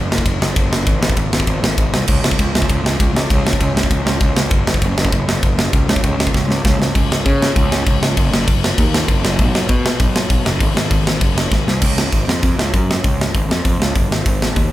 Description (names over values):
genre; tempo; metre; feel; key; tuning
punk rock; 197 BPM; 4/4; straight; Db major; A4 = 440 Hz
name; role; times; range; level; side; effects
fuzz picked electric bass; bass; 0.0-14.7 s; Gb1 to Db3; -18 LUFS; equal; overdrive
tight metal drum kit; drums; 0.1-14.6 s; crash cymbal, hi-hat, kick drum, ride cymbal, snare drum; -16 LUFS; equal; none
room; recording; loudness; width
light reverb; band playing live in one room; -14 LUFS; side -15 dB against mid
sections
0.0-7.0 A section; 7.0-11.8 B section; 11.8-14.7 C section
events
drum fill 6.3-7.0, 11.5-11.8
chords
none